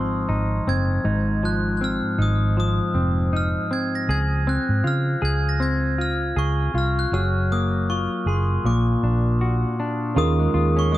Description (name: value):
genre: indie pop, bedroom pop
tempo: 79 BPM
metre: 4/4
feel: swing 60% on 16ths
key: Ab mixolydian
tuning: A4 = 440 Hz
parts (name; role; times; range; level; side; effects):
- glockenspiel with brass mallets; melody; 0.0-11.0 s; C6 to Bb6; -27 LUFS; equal; wide subtle chorus, analog delay
- semi-hollow electric guitar; accompaniment; 0.0-11.0 s; Ab2 to Ab4; -24 LUFS; left 2 dB; wide subtle chorus, warbly pitch drift
- vintage muted fingered electric bass; bass; 0.0-11.0 s; F1 to Db3; -22 LUFS; right 1 dB; none
- reed electric piano; accompaniment; 10.1-11.0 s; Db4 to Bb4; -24 LUFS; right 5 dB; none
room: little or no reverb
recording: cassette tape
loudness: -19 LUFS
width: side -15 dB against mid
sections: 0.0-10.2 A section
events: none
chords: 0.0 Ab6; 4.1 Dbmaj7; 7.1 Gbmaj9; 8.6 Bbaug; 10.2 Eb9sus4